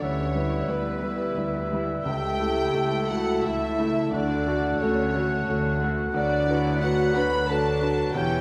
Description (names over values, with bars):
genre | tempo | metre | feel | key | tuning
classical, romantic movement for piano and orchestra | 89 BPM | 3/4 | rubato | D major | A4 = 439 Hz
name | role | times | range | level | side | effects
warm grand piano | melody | 0.0-8.4 s | C#2 to B4 | -30 LUFS | equal | none
warm studio violin section | melody | 0.0-8.4 s | B4 to B5 | -41 LUFS | equal | none
clear oboe | second line | 0.0-8.4 s | E5 to G5 | -35 LUFS | equal | none
dark clarinet | second line | 0.0-8.4 s | A4 to C#5 | -39 LUFS | equal | none
mellow hollow concert flute | second line | 0.0-8.4 s | B4 to B5 | -37 LUFS | equal | none
warm studio violin section | second line | 0.0-8.4 s | B4 to B5 | -39 LUFS | equal | none
mellow bassoon | accompaniment | 0.0-8.4 s | E3 to A3 | -39 LUFS | equal | none
warm studio viola section | accompaniment | 0.0-8.4 s | G3 to F#4 | -38 LUFS | equal | none
mellow French horn section | sustained chords | 0.0-8.4 s | B3 to B4 | -31 LUFS | equal | none
warm studio cello section | bass | 0.0-8.4 s | C#2 to E2 | -36 LUFS | equal | none
warm studio double bass section | bass | 0.0-8.4 s | E1 to D2 | -36 LUFS | equal | none
room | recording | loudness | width
wet scoring stage reverb, RT60 2.0 s | none | -25 LUFS | mono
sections
0.0-8.4 A section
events
none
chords
0.0 Em7/D; 2.1 A7/C#; 4.1 D; 6.2 Bm/D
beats
| 0.02 0.69 1.38 | 2.06 2.75 3.45 | 4.14 4.81 5.49 | 6.15 6.83 7.51 | 8.16